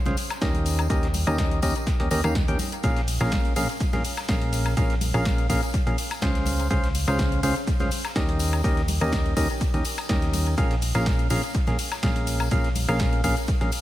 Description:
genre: piano house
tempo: 124 BPM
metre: 4/4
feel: swing 53% on 16ths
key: Bb dorian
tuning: A4 = 440 Hz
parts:
  - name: percussive organ stab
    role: riff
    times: 0.1-13.7 s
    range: Bb2 to G5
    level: -27 LUFS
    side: equal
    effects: chorus, cassette tape, sidechain pumping, dub echo
  - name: solid FM bass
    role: bass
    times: 0.1-13.7 s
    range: Bb1 to Eb2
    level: -27 LUFS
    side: equal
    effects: sidechain pumping
  - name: dusty soul sampler-style drum kit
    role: drums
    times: 0.1-13.8 s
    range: hi-hat, shaker, snare drum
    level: -41 LUFS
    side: equal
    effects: none
  - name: house drum kit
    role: drums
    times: 0.1-13.8 s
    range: hi-hat, ride cymbal, snare drum, woodblock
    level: -32 LUFS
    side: left 1 dB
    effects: dub echo
  - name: congas and tambourine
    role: percussion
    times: 0.1-13.8 s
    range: none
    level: -36 LUFS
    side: left 4 dB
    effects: dub echo
  - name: electronic kick drum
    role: drums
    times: 0.4-13.6 s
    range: none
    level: -25 LUFS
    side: equal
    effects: none
room: light reverb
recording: echo-heavy mix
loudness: -21 LUFS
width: side -14 dB against mid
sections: 0.0-13.8 A section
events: none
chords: 0.0 Dbmaj7; 0.7 Eb7; 2.8 Bbm7; 6.5 Dbmaj7; 8.4 Eb7; 10.6 Bbm7

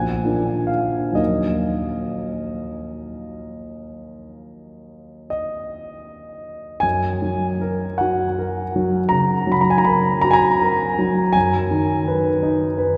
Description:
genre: classical, romantic nocturne for solo piano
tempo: 37-57 BPM (dotted quarters)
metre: 12/8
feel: rubato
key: Eb minor, F# major from 6.8 s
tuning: A4 = 438 Hz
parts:
  - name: warm grand piano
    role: solo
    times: 0.0-13.0 s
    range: Bb1 to B5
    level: -21 LUFS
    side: equal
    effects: none
room: wet cathedral reverb, RT60 5.0 s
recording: recorded in a church or concert hall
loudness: -20 LUFS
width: mono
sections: 0.0-6.8 A section; 6.8-13.0 B section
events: none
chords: 0.0 Bb7; 1.2 Ebm; 6.8 F#; 11.4 G#m7/F#

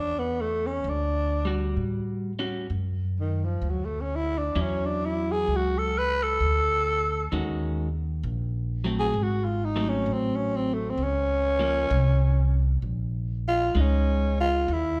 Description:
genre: jazz ballad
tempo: 65 BPM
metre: 4/4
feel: swing 67% on 8ths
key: unclear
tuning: A4 = 440 Hz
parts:
  - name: growling tenor saxophone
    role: melody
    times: 0.0-15.0 s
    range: Eb3 to Cb5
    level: -29 LUFS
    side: equal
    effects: none
  - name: upright bass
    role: bass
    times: 0.0-15.0 s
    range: Ab1 to A2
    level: -29 LUFS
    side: equal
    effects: none
  - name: vintage hollow-body jazz guitar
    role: accompaniment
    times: 1.5-14.7 s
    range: Eb3 to Gb4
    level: -33 LUFS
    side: equal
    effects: none
room: moderate recital hall reverb, RT60 1.4 s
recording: recorded in a church or concert hall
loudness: -26 LUFS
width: mono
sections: 0.0-15.0 A section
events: tenor saxophone solo 0.0-15.0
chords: 0.0 Em7; 1.8 A6; 3.6 Dmaj9; 7.3 Ebm7; 9.1 Ab7b9; 11.0 Db6; 12.8 Bbm7

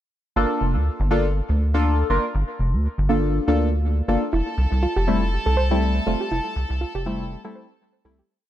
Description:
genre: deep house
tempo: 121 BPM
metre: 4/4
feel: swing 56% on 16ths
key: G dorian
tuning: A4 = 440 Hz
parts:
  - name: deep mellow chord stab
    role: stabs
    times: 0.4-8.2 s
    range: G3 to Bb4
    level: -24 LUFS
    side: left 1 dB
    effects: chorus, phaser, tape echo
  - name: rubbery square bass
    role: bass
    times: 0.4-8.2 s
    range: F1 to D2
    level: -21 LUFS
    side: equal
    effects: none
  - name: soft round pluck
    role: arpeggios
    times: 4.3-8.2 s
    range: E4 to C5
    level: -28 LUFS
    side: right 2 dB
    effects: chorus, tape echo
  - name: rich chamber violin section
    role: texture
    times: 4.3-8.3 s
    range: A4 to A5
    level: -29 LUFS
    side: equal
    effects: none
room: light reverb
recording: none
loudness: -20 LUFS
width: side -12 dB against mid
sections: 0.4-8.3 drop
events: drop 0.4-8.3; fade-out 5.7-8.3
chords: 0.4 Gm9; 4.3 Fmaj9

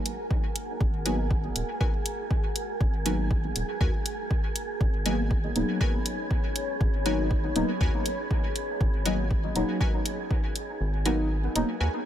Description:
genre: dub techno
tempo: 120 BPM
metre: 4/4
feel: straight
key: G# minor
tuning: A4 = 440 Hz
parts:
  - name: deep dark ambient pad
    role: sustained chords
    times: 0.0-12.1 s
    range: G#4 to B5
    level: -37 LUFS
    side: equal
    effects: chorus, built-in reverb, sidechain pumping
  - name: wind-like tuned noise texture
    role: texture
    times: 0.0-12.1 s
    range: G#4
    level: -38 LUFS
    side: right 4 dB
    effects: built-in reverb, sidechain pumping
  - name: electronic hi-hat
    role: drums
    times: 0.1-11.7 s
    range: none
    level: -31 LUFS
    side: left 1 dB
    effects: none
  - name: electronic kick drum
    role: drums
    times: 0.3-10.4 s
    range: none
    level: -27 LUFS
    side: equal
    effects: none
  - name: round analog bass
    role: bass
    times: 0.8-11.9 s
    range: D#1 to D#2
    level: -30 LUFS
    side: equal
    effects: sidechain pumping
  - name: wavetable chord stab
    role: riff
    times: 1.1-11.9 s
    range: F#4 to G#5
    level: -38 LUFS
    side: left 1 dB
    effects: sidechain pumping, dub echo
  - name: deep mellow chord stab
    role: stabs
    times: 1.1-11.7 s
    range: F#3 to D#4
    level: -31 LUFS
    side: left 1 dB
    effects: chorus, phaser, sidechain pumping, dub echo
room: little or no reverb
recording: none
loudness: -25 LUFS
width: side -11 dB against mid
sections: 0.0-12.1 A section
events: kick drops out 10.8-12.1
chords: 0.0 G#m9

